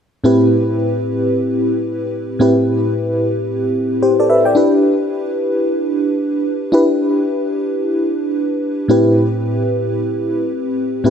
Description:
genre	R&B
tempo	free time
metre	none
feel	none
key	A minor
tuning	A4 = 440 Hz
part	FM electric piano with soft pad layer	solo	0.2-11.1 s	A2 to G5	-14 LUFS	equal	chorus, tremolo
room	moderate plate reverb, RT60 2.5 s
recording	none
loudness	-14 LUFS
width	side -7 dB against mid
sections	0.2-8.9 A section; 8.9-11.1 B section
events	none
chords	0.2 Am7; 4.6 Em7; 8.9 Am7

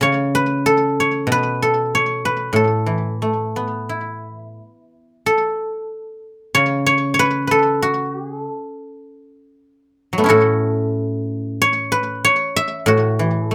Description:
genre	chinese traditional, Chinese solo plucked strings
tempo	85-98 BPM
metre	4/4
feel	rubato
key	A gong mode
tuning	A4 = 440 Hz
part	guzheng	solo	0.0-13.5 s	A2 to E5	-19 LUFS	equal	slapback echo
room	moderate booth ambience, RT60 0.3 s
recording	close, detailed microphones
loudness	-18 LUFS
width	mono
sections	0.0-5.3 A section; 5.3-13.5 B section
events	none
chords	none

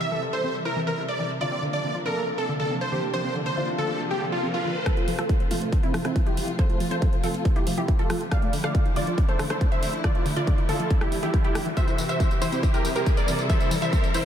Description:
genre	uplifting trance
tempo	139 BPM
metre	4/4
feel	straight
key	F major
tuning	A4 = 439 Hz
part	dense compressed supersaw	melody	0.0-14.2 s	A3 to F5	-29 LUFS	right 1 dB	sidechain pumping, low-pass filter, ping-pong delay
part	warm concert grand piano	second line	0.0-4.8 s	F4 to A4	-35 LUFS	equal	analog chorus, ping-pong delay
part	wide unison pluck	second line	0.0-14.2 s	E4 to F5	-34 LUFS	equal	lush chorus, sidechain pumping, ping-pong delay
part	warm symphonic string section	sustained chords	0.0-14.2 s	C3 to E5	-32 LUFS	equal	sidechain pumping
part	analog pluck	arpeggios	0.0-14.2 s	D3 to C5	-32 LUFS	left 1 dB	chorus, sidechain pumping, ping-pong delay
part	riser	sound effects	3.4-14.2 s	none	-36 LUFS	equal	none
part	big-room dance drum kit	drums	4.9-14.2 s	hi-hat, rim click, tambourine	-34 LUFS	equal	low-pass filter on snare, low-pass filter on hats, low-pass filter on perc, low-pass filter on room
part	electronic kick drum	drums	4.9-14.0 s	none	-23 LUFS	equal	none
room	moderate huge ambient reverb, RT60 7.9 s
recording	dreamy mix soaked in reverb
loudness	-22 LUFS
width	side -9 dB against mid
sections	0.0-4.9 A section; 4.9-14.2 B section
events	riser 3.4-4.9, 4.9-14.2; build-up 4.9-14.2; filter sweep on supersaw synth 4.9-14.2; filter sweep on synth arpeggio sound 4.9-14.2; filter sweep on synth pluck 4.9-14.2; drum fill 11.8-14.2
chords	0.0 C; 1.4 Bbadd9; 4.9 F; 8.3 Dmadd9; 11.8 C

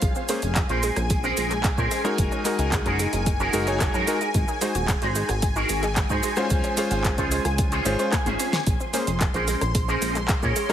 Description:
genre	nu-disco, nu disco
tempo	111 BPM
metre	4/4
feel	straight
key	Bb minor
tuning	A4 = 440 Hz
part	lush unison pad	sustained chords	0.0-10.7 s	Ab5 to C6	-32 LUFS	left 1 dB	chorus, phaser, vintage 12-bit sampler grit, sidechain pumping
part	analog pluck	arpeggios	0.0-10.7 s	Ab3 to C5	-33 LUFS	right 2 dB	chorus, cassette tape, sidechain pumping, digital delay
part	chorused synth bass	bass	0.0-10.5 s	Eb1 to Bb2	-27 LUFS	equal	none
part	electronic kick drum	drums	0.0-10.5 s	none	-25 LUFS	equal	none
part	pop drum kit	drums	0.0-10.7 s	cabasa, handclaps, hi-hat, rim click, snare drum, toms	-29 LUFS	right 1 dB	none
part	cabasa	percussion	0.0-10.7 s	none	-40 LUFS	left 6 dB	none
part	bright electric grand piano	accompaniment	0.3-10.7 s	Ab3 to Db5	-28 LUFS	left 1 dB	sidechain pumping, digital delay
part	electric guitar with an envelope filter	riff	0.3-10.7 s	Db4 to Ab5	-28 LUFS	right 1 dB	ensemble chorus, digital delay
room	light reverb, digital ambience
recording	heavily compressed radio sound, multiband compression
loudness	-21 LUFS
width	side -10 dB against mid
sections	0.0-10.7 A section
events	clean electric guitar fill 7.6-8.7; drum fill 8.1-8.7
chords	0.0 Bbm9; 2.2 Gb69; 4.3 Ab7; 6.5 Dbmaj7; 8.7 Bbm9

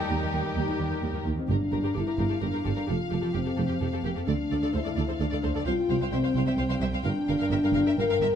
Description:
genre	cinematic, epic orchestral film score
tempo	129 BPM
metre	3/4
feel	straight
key	unclear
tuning	A4 = 440 Hz
part	rich symphonic violin section	melody	0.0-8.4 s	G4 to G5	-40 LUFS	left 4 dB	none
part	warm symphonic violin section	second line	0.0-8.3 s	G4 to F5	-37 LUFS	left 3 dB	none
part	rich symphonic viola section	accompaniment	0.0-8.3 s	Eb3 to C5	-37 LUFS	right 1 dB	none
part	dark French horn section	sustained chords	0.0-8.4 s	G3 to Bb4	-28 LUFS	left 3 dB	none
part	mellow woodwind section	sustained chords	0.0-1.3 s	G3 to G5	-36 LUFS	equal	none
part	warm chamber cello section	bass	0.0-8.4 s	C2 to G2	-33 LUFS	right 3 dB	none
part	dark tuba	bass	0.1-8.3 s	F1 to Eb2	-34 LUFS	right 5 dB	none
part	warm symphonic double bass section	bass	0.1-8.3 s	F1 to Eb2	-33 LUFS	right 4 dB	none
part	timpani	percussion	1.5-2.1 s	G2	-35 LUFS	left 1 dB	none
room	moderate scoring stage reverb, RT60 1.6 s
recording	none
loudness	-25 LUFS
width	side -8 dB against mid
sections	0.0-1.5 A section; 1.5-8.4 B section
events	none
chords	0.0 Eb; 1.5 Gm7; 2.9 Fadd9; 4.3 Dm; 5.7 Csus4; 7.1 Gm7

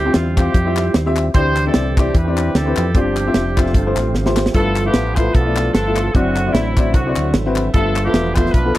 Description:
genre	uptempo gospel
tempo	150 BPM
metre	4/4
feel	swing 57% on 8ths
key	unclear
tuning	A4 = 440 Hz
part	clear horn section	melody	0.0-8.8 s	A3 to C5	-22 LUFS	equal	none
part	clear baby grand piano	accompaniment	0.0-8.8 s	G2 to G5	-21 LUFS	left 3 dB	none
part	percussive tonewheel organ	sustained chords	0.0-8.8 s	D3 to G4	-25 LUFS	right 5 dB	slow rotary speaker, overdrive, chorus vibrato
part	fingered electric bass	bass	0.0-8.8 s	E1 to F2	-20 LUFS	equal	none
part	tight funk drum kit	drums	0.1-8.7 s	hi-hat, kick drum, snare drum	-16 LUFS	equal	none
part	group handclap	percussion	0.4-8.8 s	none	-28 LUFS	left 6 dB	none
room	studio reverb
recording	dry, close 1970s-style studio recording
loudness	-14 LUFS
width	side -15 dB against mid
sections	0.0-8.8 A section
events	drum fill 4.1-4.5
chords	0.0 Dm11; 1.3 D9sus4; 2.9 G7sus4; 3.7 G9sus4; 4.5 G13; 6.1 D9/F#; 7.7 G13

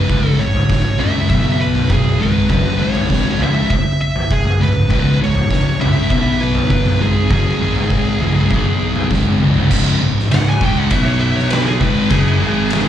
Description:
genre	stoner and doom metal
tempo	100 BPM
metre	4/4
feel	straight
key	C# minor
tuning	A4 = 441 Hz
part	fuzz lead guitar	melody	0.0-12.9 s	G#4 to G#5	-22 LUFS	right 1 dB	distortion, slapback echo
part	thick fuzz guitar	riff	0.0-12.9 s	C#2 to C#4	-19 LUFS	left 6 dB	distortion
part	thick fuzz guitar	riff	0.0-12.9 s	C#2 to C#4	-20 LUFS	right 6 dB	distortion
part	fuzz picked electric bass	bass	0.0-12.9 s	C#1 to C#2	-22 LUFS	equal	overdrive
part	oversized low-tuned drum kit	drums	0.1-12.9 s	crash cymbal, kick drum, ride cymbal, snare drum, toms	-17 LUFS	equal	none
part	thick fuzz guitar	riff	9.7-12.9 s	C#2 to C#4	-25 LUFS	equal	none
room	light reverb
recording	live gig heard through the venue's PA, club reverb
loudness	-13 LUFS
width	side -10 dB against mid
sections	0.0-9.7 A section; 9.7-12.9 B section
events	drum fill 9.4; lead electric guitar solo 9.7-12.9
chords	0.0 C#5; 1.3 B5; 2.2 C#5; 2.8 G#5; 3.4 C#5; 6.1 B5; 7.0 C#5; 7.6 G#5; 8.2 C#5; 8.5 B5; 9.1 C#5; 10.9 B5; 11.8 C#5

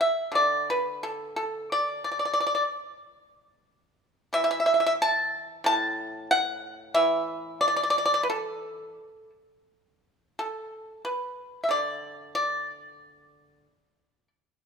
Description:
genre	chinese traditional, Chinese solo plucked strings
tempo	91 BPM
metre	4/4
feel	rubato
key	A zhi mode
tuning	A4 = 440 Hz
part	pipa	solo	0.0-14.3 s	A2 to A5	-24 LUFS	equal	none
room	light reverb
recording	minimal, uncompressed stereo recording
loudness	-24 LUFS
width	side -6 dB against mid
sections	0.0-9.7 A section; 9.7-14.7 B section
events	none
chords	none

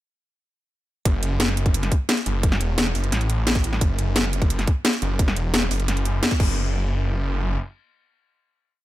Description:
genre	dark technical drum and bass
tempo	174 BPM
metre	4/4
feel	straight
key	F# minor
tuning	A4 = 440 Hz
part	snarling distorted saw bass	bass	1.1-7.6 s	E1 to A1	-23 LUFS	equal	distortion, overdrive
part	drum and bass drum kit	drums	1.1-6.5 s	crash cymbal, hi-hat, snare drum	-23 LUFS	equal	overdrive, small room ambience
part	electronic kick drum	drums	1.1-6.5 s	none	-20 LUFS	equal	overdrive, small room ambience
room	little or no reverb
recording	none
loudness	-20 LUFS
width	side -15 dB against mid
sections	1.1-6.6 drop; 6.6-8.8 final hit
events	drop 1.1-6.6; band accent 6.2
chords	none

